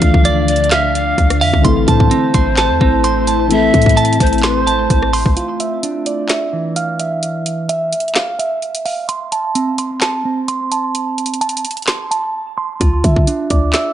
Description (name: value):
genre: hip hop, trap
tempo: 129 BPM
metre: 4/4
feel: half-time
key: D minor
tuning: A4 = 438 Hz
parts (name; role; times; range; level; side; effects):
- mellow pan flute; second line; 0.0-5.3 s; C5 to F5; -19 LUFS; left 1 dB; tape echo
- dark grand piano; accompaniment; 0.0-5.4 s; E3 to F5; -20 LUFS; left 6 dB; low-pass filter
- ethereal airy pad; sustained chords; 0.0-5.3 s; D3 to F5; -22 LUFS; left 2 dB; ensemble chorus, built-in reverb
- clean electric guitar; arpeggios; 0.0-13.9 s; E3 to C6; -17 LUFS; right 3 dB; spring reverb, low-pass filter, tape echo
- clean 808-style bass; bass; 0.0-5.4, 12.8-13.7 s; A1 to D3; -17 LUFS; equal; none
- trap drum kit; drums; 0.0-13.9 s; handclaps, hi-hat, kick drum, rim click, snare drum; -16 LUFS; equal; overdrive
room: digital ambience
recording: nothing above 10.8 kHz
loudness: -13 LUFS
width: side -10 dB against mid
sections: 0.0-5.4 A section; 5.4-13.9 B section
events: break 5.4-12.8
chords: 0.0 Dmadd9; 1.6 Am; 5.4 Dmadd9; 9.1 Am; 12.8 Dmadd9